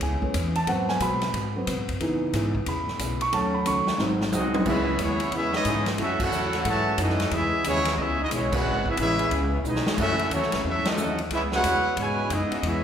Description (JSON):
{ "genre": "jazz, big band swing", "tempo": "181 BPM", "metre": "4/4", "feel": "swing 64% on 8ths", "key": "C# minor", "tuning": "A4 = 440 Hz", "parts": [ { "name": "hollow-body jazz guitar", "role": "accompaniment", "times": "0.0-12.8 s", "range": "F#2 to B#4", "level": "-34 LUFS", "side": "left 3 dB", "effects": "none" }, { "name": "warm concert grand piano", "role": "accompaniment", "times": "0.0-4.2 s", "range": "E3 to C#6", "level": "-26 LUFS", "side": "right 2 dB", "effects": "none" }, { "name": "upright bass", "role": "bass", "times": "0.0-12.8 s", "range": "G#1 to C#3", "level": "-30 LUFS", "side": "equal", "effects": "none" }, { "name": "swinging big-band drum kit", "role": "drums", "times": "0.0-12.7 s", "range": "crash cymbal, hi-hat, kick drum, ride cymbal, snare drum, toms", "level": "-30 LUFS", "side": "equal", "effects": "none" }, { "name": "clear trumpet section", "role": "melody", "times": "4.3-12.8 s", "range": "A3 to A5", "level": "-26 LUFS", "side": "equal", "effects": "none" }, { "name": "warm trombone section", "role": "second line", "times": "4.3-12.8 s", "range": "B2 to A4", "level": "-29 LUFS", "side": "right 1 dB", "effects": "none" }, { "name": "clear trombone section", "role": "sustained chords", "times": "4.7-12.8 s", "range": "E3 to B4", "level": "-35 LUFS", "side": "left 2 dB", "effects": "none" } ], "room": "wet recital hall reverb, RT60 1.4 s", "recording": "recorded in a church or concert hall", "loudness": "-22 LUFS", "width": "side -8 dB against mid", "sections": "0.0-4.7 A section; 4.7-12.8 B section", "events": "grand piano solo 0.0-4.7; drum fill 4.0-4.7, 9.6-10.0; band accent 6.2, 8.5, 10.8", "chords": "0.0 Amaj7; 0.7 G#7#9; 2.0 C#m7; 3.3 D#m7b5; 4.0 G#7; 4.7 C#m7; 6.0 F#m7; 7.3 C#m7; 10.0 F#m7; 11.3 C#m7" }